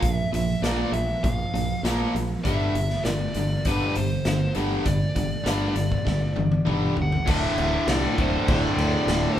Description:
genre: hard rock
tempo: 99 BPM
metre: 4/4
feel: straight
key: unclear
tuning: A4 = 442 Hz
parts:
  - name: biting lead guitar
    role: melody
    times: 0.0-9.4 s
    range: B4 to F#5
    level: -30 LUFS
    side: equal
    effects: overdrive
  - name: cranked stack guitar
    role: riff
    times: 0.0-9.4 s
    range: D2 to Bb3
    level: -27 LUFS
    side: left 3 dB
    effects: overdrive
  - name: distorted electric guitar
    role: riff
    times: 0.0-9.4 s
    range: D2 to Bb3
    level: -31 LUFS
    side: right 7 dB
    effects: overdrive
  - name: fingered electric bass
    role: bass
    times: 0.0-9.4 s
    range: D1 to D2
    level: -28 LUFS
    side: equal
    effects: none
  - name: raw garage drum kit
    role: drums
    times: 0.0-9.2 s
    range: crash cymbal, hi-hat, kick drum, snare drum, toms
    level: -27 LUFS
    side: equal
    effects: none
  - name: overdriven electric guitar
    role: riff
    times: 7.2-9.4 s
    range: D2 to D3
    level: -30 LUFS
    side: equal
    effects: phaser
room: wet large studio reverb, RT60 0.9 s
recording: band playing live in one room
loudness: -21 LUFS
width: side -11 dB against mid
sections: 0.0-7.3 A section; 7.3-9.4 B section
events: drum fill 6.1-7.3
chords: 0.0 Bb5; 2.4 G5; 7.3 D5

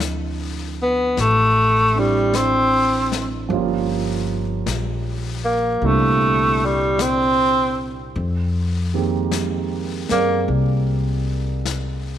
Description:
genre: jazz ballad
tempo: 52 BPM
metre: 4/4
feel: swing 67% on 8ths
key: unclear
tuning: A4 = 442 Hz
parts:
  - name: warm concert grand piano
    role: accompaniment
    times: 0.0-12.2 s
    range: Bb2 to D5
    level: -26 LUFS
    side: right 10 dB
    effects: none
  - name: upright bass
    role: bass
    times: 0.0-12.2 s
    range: G1 to F#2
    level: -23 LUFS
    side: left 2 dB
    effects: none
  - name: jazz brush drum kit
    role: drums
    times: 0.0-12.2 s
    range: brushed snare drum, hi-hat, snare drum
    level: -31 LUFS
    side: left 8 dB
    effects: none
  - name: mellow tenor saxophone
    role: melody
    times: 0.8-10.5 s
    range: G3 to C4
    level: -17 LUFS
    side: equal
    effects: none
room: light reverb, studio reverb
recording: 1960s-style stereo with parts hard left and right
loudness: -17 LUFS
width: side -10 dB against mid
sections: 0.0-12.2 A section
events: none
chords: 0.0 Dm9; 3.5 Gm7b5; 5.8 C7; 8.1 Fm11

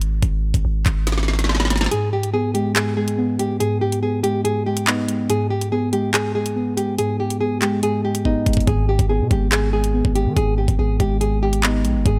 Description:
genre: hip hop, drill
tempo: 142 BPM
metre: 4/4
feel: half-time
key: G# harmonic minor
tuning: A4 = 441 Hz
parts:
  - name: long sustained 808-style bass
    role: bass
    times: 0.0-1.9, 8.7-12.2 s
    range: G#1 to D#3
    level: -23 LUFS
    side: equal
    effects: none
  - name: drill drum kit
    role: drums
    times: 0.0-12.2 s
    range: handclaps, hi-hat, kick drum, snare drum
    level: -23 LUFS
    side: equal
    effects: overdrive
  - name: nylon-string guitar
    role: melody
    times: 1.9-12.2 s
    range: D#4 to G#4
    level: -25 LUFS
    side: equal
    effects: digital delay
  - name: muted felt-like synth keys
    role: accompaniment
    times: 1.9-12.2 s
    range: G#2 to B3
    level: -24 LUFS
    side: equal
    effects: chorus
room: little or no reverb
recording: none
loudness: -20 LUFS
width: mono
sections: 0.0-12.2 A section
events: break 0.0-1.9; drum fill 1.1-1.9, 8.3-8.7; kick muted 1.9-8.7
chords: 0.0 G#5; 1.9 G#m

